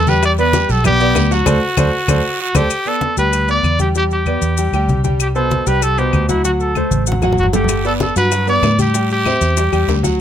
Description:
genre	latin, salsa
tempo	192 BPM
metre	4/4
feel	straight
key	G major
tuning	A4 = 436 Hz
part	clear trumpet	melody	0.0-10.0 s	E4 to D5	-18 LUFS	equal	none
part	bright concert grand piano	accompaniment	0.0-10.2 s	B2 to G5	-19 LUFS	left 1 dB	none
part	vintage muted fingered electric bass	bass	0.0-10.2 s	G1 to A2	-18 LUFS	equal	none
part	congas	percussion	0.1-10.2 s	none	-21 LUFS	left 1 dB	none
part	guiro	percussion	0.1-2.6, 7.7-10.2 s	none	-29 LUFS	right 8 dB	none
part	maracas	percussion	0.1-10.2 s	none	-27 LUFS	left 9 dB	none
part	bongos	percussion	0.2-2.6, 7.7-10.2 s	none	-25 LUFS	left 6 dB	none
part	claves	percussion	0.2-9.9 s	none	-29 LUFS	left 8 dB	none
room	little or no reverb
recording	close, detailed microphones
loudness	-13 LUFS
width	side -10 dB against mid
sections	0.0-2.7 A section; 2.7-10.2 B section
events	band accent 1.5-2.7; drum fill 1.8-2.7, 6.9-7.7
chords	0.2 Em7; 1.5 D7; 2.7 Gadd9; 4.0 Em7; 5.2 C5; 6.4 D7; 7.7 Gmaj7; 8.9 Am7

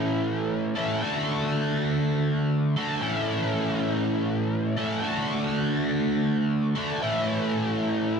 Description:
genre	rock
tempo	120 BPM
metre	4/4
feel	straight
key	A major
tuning	A4 = 440 Hz
part	cranked stack guitar	solo	0.0-8.2 s	A2 to A4	-24 LUFS	equal	overdrive, flanger, analog delay
room	moderate echo chamber reverb, RT60 1.6 s, digital ambience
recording	echo-heavy mix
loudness	-24 LUFS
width	side -6 dB against mid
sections	0.0-8.2 A section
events	none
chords	0.0 A; 1.0 D; 3.0 A; 5.0 D; 7.0 A

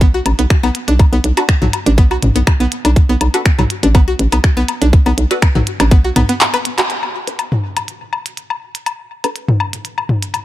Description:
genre	minimal techno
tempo	122 BPM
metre	4/4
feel	swing 53% on 16ths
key	B minor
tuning	A4 = 440 Hz
part	string-like resonator pluck	riff	0.0-6.8 s	F#3 to B4	-19 LUFS	equal	chorus, sidechain pumping, ping-pong delay
part	hollow knocking FM bass	bass	0.0-6.2 s	A1 to B1	-14 LUFS	equal	sidechain pumping
part	electronic kick drum	drums	0.0-6.0 s	none	-10 LUFS	equal	none
part	minimal click drum kit	drums	0.0-10.4 s	finger snaps, handclaps, hi-hat	-18 LUFS	right 1 dB	none
part	electronic woodblock and toms	percussion	0.3-10.4 s	none	-19 LUFS	left 3 dB	overdrive, tape echo
part	filtered dub chord stab	stabs	1.4-9.3 s	D4 to B4	-24 LUFS	left 2 dB	phaser, lush chorus, tape echo
room	little or no reverb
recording	none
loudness	-12 LUFS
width	side -14 dB against mid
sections	0.0-6.9 A section; 6.9-10.4 B section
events	drop 0.0-6.9; break 6.4-6.9; drum fill 6.4-6.9; band accent 6.8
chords	0.0 B7(no3); 6.9 Bm7

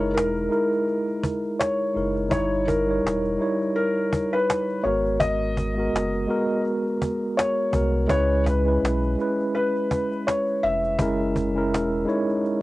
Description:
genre	lo-fi hip hop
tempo	83 BPM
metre	4/4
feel	swing 57% on 16ths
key	C# dorian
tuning	A4 = 440 Hz
part	felt-muted upright piano	melody	0.0-12.0 s	A#4 to E5	-25 LUFS	left 2 dB	cassette tape
part	mellow tine electric piano	accompaniment	0.0-12.6 s	G3 to C#5	-24 LUFS	right 1 dB	medium stereo tremolo, cassette tape
part	sub bass with octave	bass	0.0-12.1 s	E1 to C#2	-27 LUFS	equal	none
part	cajon	drums	0.2-12.5 s	none	-27 LUFS	equal	vintage 12-bit sampler grit, cassette tape
room	light reverb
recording	home recording on cassette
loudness	-21 LUFS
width	side -18 dB against mid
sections	0.0-12.6 A section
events	none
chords	0.0 F#13; 2.3 D#7b9; 4.8 G#m9; 8.1 C#m7; 11.0 F#13

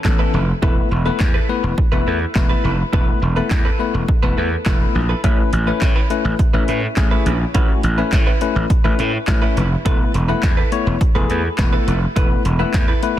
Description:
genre	dance-pop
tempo	104 BPM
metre	4/4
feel	straight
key	A major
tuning	A4 = 441 Hz
part	bell-like tine electric piano	accompaniment	0.0-13.2 s	E3 to C#5	-22 LUFS	left 7 dB	sidechain pumping
part	direct-recorded clean electric guitar	riff	0.0-13.2 s	C#4 to B4	-26 LUFS	right 6 dB	lush chorus
part	gritty slap bass	bass	0.0-13.2 s	E1 to A2	-20 LUFS	equal	overdrive, sidechain pumping
part	punchy analog drum machine	drums	0.0-13.2 s	handclaps, hi-hat, kick drum, snare drum	-17 LUFS	equal	none
room	little or no reverb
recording	dense, heavily limited modern master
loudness	-15 LUFS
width	side -12 dB against mid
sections	0.0-13.2 A section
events	none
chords	0.0 Aadd9; 0.6 Esus4; 5.2 Aadd9; 9.9 Esus4

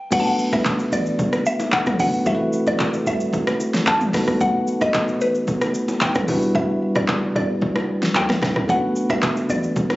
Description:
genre	amapiano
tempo	112 BPM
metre	4/4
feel	straight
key	unclear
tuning	A4 = 440 Hz
part	mallet-like synth pluck	melody	0.0-10.0 s	B4 to A5	-24 LUFS	left 1 dB	chorus, phaser, tape echo
part	bell-like tine electric piano	accompaniment	0.1-10.0 s	G3 to B4	-23 LUFS	equal	fast stereo tremolo
part	hollow log drum bass	bass	0.1-10.0 s	A1 to E2	-28 LUFS	equal	none
part	deep house drum kit	drums	0.1-10.0 s	crash cymbal, handclaps, hi-hat, kick drum, rim click, shaker, snare drum, toms	-23 LUFS	equal	overdrive
part	congas and bongos	percussion	0.1-10.0 s	none	-29 LUFS	right 1 dB	none
room	light reverb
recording	recorded on a phone in the room, club reverb, compression, nothing above 7.7 kHz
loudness	-18 LUFS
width	side -18 dB against mid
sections	0.1-10.0 A section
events	drop 0.1-10.0; hi-hats muted 6.5-8.7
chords	0.1 Bm7; 2.3 Am69; 4.1 B7; 6.3 Em9; 8.7 Bm7

